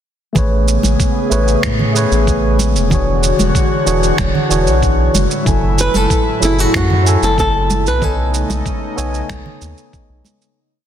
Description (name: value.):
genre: sunset chillout.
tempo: 94 BPM.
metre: 4/4.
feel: straight.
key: A major.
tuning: A4 = 440 Hz.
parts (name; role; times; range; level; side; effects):
tine electric piano; accompaniment; 0.3-10.6 s; E3 to G#5; -19 LUFS; equal; auto-pan, vintage 12-bit sampler grit, low-pass filter, tape echo.
congas; percussion; 0.3-10.4 s; none; -23 LUFS; right 2 dB; none.
airy breathy pad; sustained chords; 0.4-10.5 s; A2 to C#5; -21 LUFS; left 1 dB; chorus.
round analog bass; bass; 0.4-10.2 s; E1 to A2; -16 LUFS; equal; none.
electronic cabasa and finger snaps; drums; 0.4-10.5 s; none; -23 LUFS; right 5 dB; soft clipping on snare.
electronic kick drum; drums; 0.4-10.1 s; none; -18 LUFS; equal; none.
flamenco guitar; melody; 5.8-9.9 s; E4 to B4; -17 LUFS; right 1 dB; tape echo.
room: moderate scoring stage reverb, RT60 2.0 s, digital ambience.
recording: dense, heavily limited modern master.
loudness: -12 LUFS.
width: side -10 dB against mid.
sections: 0.4-10.6 groove.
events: filter sweep on tine electric piano 0.4-10.6; fade-out 7.2-10.6.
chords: 0.4 Amaj9; 2.9 E13; 5.1 F#m9; 8.0 B13.